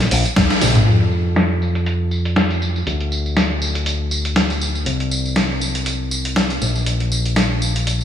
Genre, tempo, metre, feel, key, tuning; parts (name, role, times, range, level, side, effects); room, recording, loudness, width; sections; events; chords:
nu-disco, nu disco; 120 BPM; 4/4; swing 56% on 16ths; A4 = 440 Hz
fingered electric bass with an envelope filter; bass; 0.0-8.0 s; Bb1 to F2; -20 LUFS; left 1 dB
dusty soul sampler-style drum kit; drums; 0.0-8.0 s; hi-hat, snare drum, tambourine, toms; -18 LUFS; equal; low-pass filter on hats, small room ambience, low-pass filter on perc, low-pass filter on snare, low-pass filter on toms
electronic kick drum; drums; 0.4-0.5 s; -19 LUFS; equal; small room ambience
moderate lush hall reverb, RT60 2.3 s; studio ambience; -16 LUFS; side -9 dB against mid
0.9-8.0 A section
band accent 0.4; drum fill 0.5-0.9; filter sweep on drum 0.9-8.0